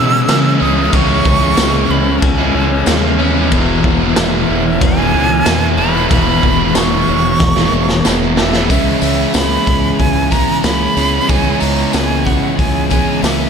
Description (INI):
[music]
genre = rock, shoegaze and dream pop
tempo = 93 BPM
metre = 4/4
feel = straight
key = unclear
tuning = A4 = 441 Hz
[part]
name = breathy bright jazz flute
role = melody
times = 0.0-13.5 s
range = E5 to E6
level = -19 LUFS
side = right 4 dB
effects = digital delay
[part]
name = twelve-string electric guitar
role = arpeggios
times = 0.0-13.5 s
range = E3 to G#4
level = -24 LUFS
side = left 7 dB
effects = none
[part]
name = biting overdriven guitar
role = riff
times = 0.0-13.5 s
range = E2 to C#4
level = -19 LUFS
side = left 1 dB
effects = none
[part]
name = overdriven semi-hollow guitar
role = riff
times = 0.0-13.5 s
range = E2 to E4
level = -19 LUFS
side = right 12 dB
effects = reverse reverb
[part]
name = thick fuzz guitar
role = riff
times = 0.0-13.5 s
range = E2 to C#4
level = -20 LUFS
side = left 12 dB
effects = distortion, lush chorus
[part]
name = growling fingered electric bass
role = bass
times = 0.0-13.4 s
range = E1 to C#3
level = -19 LUFS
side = equal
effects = overdrive
[part]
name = raw garage drum kit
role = drums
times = 0.3-13.4 s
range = crash cymbal, hi-hat, kick drum, snare drum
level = -17 LUFS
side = equal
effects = none
[part]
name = tambourine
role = percussion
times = 0.3-13.4 s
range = none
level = -28 LUFS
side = left 17 dB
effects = none
[sound]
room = light reverb, studio reverb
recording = none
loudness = -11 LUFS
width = side -6 dB against mid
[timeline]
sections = 0.0-8.7 A section; 8.7-13.5 B section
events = drum fill 7.4-8.7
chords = 0.0 C#m7; 3.5 E6; 8.7 C#m7